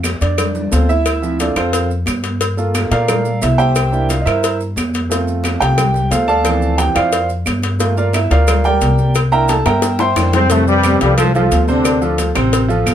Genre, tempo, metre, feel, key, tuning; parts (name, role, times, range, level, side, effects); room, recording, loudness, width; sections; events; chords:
latin, salsa; 178 BPM; 4/4; straight; F major; A4 = 440 Hz
upright bass; bass; 0.0-12.9 s; G1 to Bb2; -17 LUFS; left 1 dB
claves; percussion; 0.0-12.9 s; -26 LUFS; right 6 dB
congas; percussion; 0.0-12.9 s; -24 LUFS; equal
maracas; percussion; 0.0-12.9 s; -30 LUFS; right 6 dB
cowbell and bongos; percussion; 0.1-12.9 s; -22 LUFS; left 5 dB
clear baby grand piano; accompaniment; 0.2-12.9 s; C3 to C6; -16 LUFS; right 2 dB
bright trombone section; melody; 10.3-12.2 s; G2 to F4; -16 LUFS; left 1 dB
light reverb; -13 LUFS; side -10 dB against mid
0.0-10.5 A section; 10.5-12.9 B section
grand piano solo 0.0-10.5; drum fill 9.5-10.5
0.0 F; 1.1 Dm7; 2.4 Gm7; 3.8 C7; 5.1 F; 6.5 Dm7; 7.8 C7; 10.5 F; 11.8 Dm7